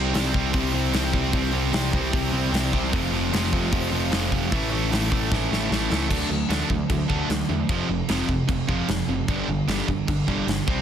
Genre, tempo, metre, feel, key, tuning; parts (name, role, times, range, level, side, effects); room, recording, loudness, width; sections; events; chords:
punk rock; 151 BPM; 4/4; straight; A4 = 440 Hz
distorted electric guitar; riff; 0.0-10.8 s; F2 to D4; -26 LUFS; right 10 dB; overdrive
sludgy distorted guitar; riff; 0.0-10.8 s; F2 to F4; -28 LUFS; left 11 dB; overdrive
growling picked electric bass; bass; 0.0-10.8 s; F1 to E2; -28 LUFS; equal; overdrive
big rock drum kit; drums; 0.1-10.8 s; crash cymbal, hi-hat, kick drum, snare drum; -27 LUFS; equal
light reverb; dense, heavily limited modern master; -21 LUFS; side -9 dB against mid
0.0-6.1 A section; 6.1-10.8 B section
drum fill 5.3-6.1
0.0 C; 2.9 F; 4.5 A; 6.1 D; 7.7 F5; 9.3 G5